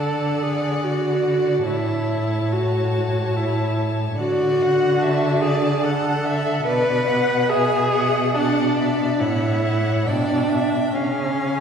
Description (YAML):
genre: classical, slow romantic movement for string quartet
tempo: 71 BPM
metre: 3/4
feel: rubato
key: A major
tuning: A4 = 440 Hz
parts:
  - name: clear violin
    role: melody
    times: 0.0-11.6 s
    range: E5 to A5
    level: -31 LUFS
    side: left 5 dB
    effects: none
  - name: rich violin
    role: second line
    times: 0.0-11.6 s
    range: C#5 to F#5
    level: -29 LUFS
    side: left 3 dB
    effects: none
  - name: clear viola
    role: accompaniment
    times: 0.0-11.6 s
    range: C#4 to B4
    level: -21 LUFS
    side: equal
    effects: none
  - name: rich cello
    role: bass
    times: 0.0-11.6 s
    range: A2 to D3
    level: -23 LUFS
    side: right 1 dB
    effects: none
room: wet concert hall reverb, RT60 2.1 s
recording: heard from further back in the room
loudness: -18 LUFS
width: side -7 dB against mid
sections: 0.0-11.6 A section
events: none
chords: 0.0 D; 1.7 A; 4.2 D; 6.7 Bm; 9.2 F#m/A; 10.1 G/B; 10.9 C#